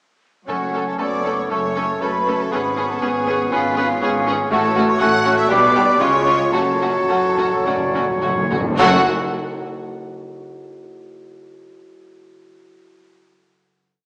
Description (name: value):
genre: classical, dramatic, fast romantic movement for symphony orchestra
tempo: 103-122 BPM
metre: 4/4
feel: rubato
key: F# minor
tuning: A4 = 440 Hz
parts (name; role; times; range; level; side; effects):
- rich studio violin section; melody; 0.5-9.1 s; E#4 to A4; -28 LUFS; equal; none
- bright clarinet; second line; 0.5-9.0 s; E#4 to D5; -30 LUFS; equal; none
- bright symphonic violin section; second line; 0.5-9.1 s; E#4 to F#5; -30 LUFS; equal; none
- clear oboe; second line; 0.5-9.0 s; B4 to C#5; -26 LUFS; equal; none
- mellow small flute group; second line; 0.5-9.1 s; E#5 to F#6; -25 LUFS; equal; none
- clear symphonic viola section; accompaniment; 0.5-9.1 s; G3 to F#4; -29 LUFS; equal; none
- warm bassoon; accompaniment; 0.5-9.0 s; F#3 to C#4; -28 LUFS; equal; none
- mellow French horn section; sustained chords; 0.5-9.0 s; F#3 to A4; -28 LUFS; equal; none
- concert harp; arpeggios; 0.5-9.1 s; F#2 to C#5; -36 LUFS; equal; none
- clear symphonic cello section; bass; 0.5-9.1 s; F#2 to C#3; -29 LUFS; equal; none
- clear symphonic double bass section; bass; 0.5-9.1 s; F#1 to C#2; -34 LUFS; equal; none
- timpani; percussion; 0.5-1.2, 6.5-9.0 s; F#2; -31 LUFS; equal; none
room: wet scoring stage reverb, RT60 1.9 s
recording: small speaker sound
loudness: -18 LUFS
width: mono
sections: 0.5-8.8 A section; 8.8-11.0 final chord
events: slowing down 3.5-8.8; timpani fill 6.5-8.8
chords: 0.5 F#m; 2.5 C#7/G#; 4.5 F#m/A; 5.5 G/B; 6.0 C#; 6.5 F#m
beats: | 0.48 1.00 1.51 2.02 | 2.52 3.02 3.53 4.02 | 4.51 5.01 5.50 6.01 | 6.54 7.10 7.66 8.22 | 8.79